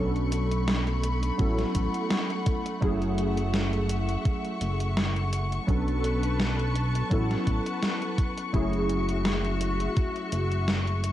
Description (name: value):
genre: vaporwave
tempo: 84 BPM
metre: 4/4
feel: swing 54% on 16ths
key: F# minor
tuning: A4 = 441 Hz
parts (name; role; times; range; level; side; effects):
- warbly lo-fi synth keys; accompaniment; 0.0-11.1 s; F#3 to A4; -30 LUFS; equal; ensemble chorus, analog delay
- rich symphonic string section; sustained chords; 0.0-11.1 s; A3 to C#6; -33 LUFS; left 2 dB; vintage 12-bit sampler grit
- chorused synth bass; bass; 0.0-11.1 s; F#1 to B1; -28 LUFS; equal; tube saturation
- gated 80s digital drum machine; drums; 0.2-11.1 s; hi-hat, snare drum; -31 LUFS; equal; gated reverb, gated reverb snare, overdrive
- electronic kick drum; drums; 1.4-10.1 s; none; -27 LUFS; equal; overdrive
room: light reverb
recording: cassette tape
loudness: -24 LUFS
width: side -12 dB against mid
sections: 0.0-11.1 A section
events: none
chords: 0.0 Bm9; 1.4 A69; 2.8 F#m7; 5.7 Bm9; 7.1 A69; 8.5 F#m7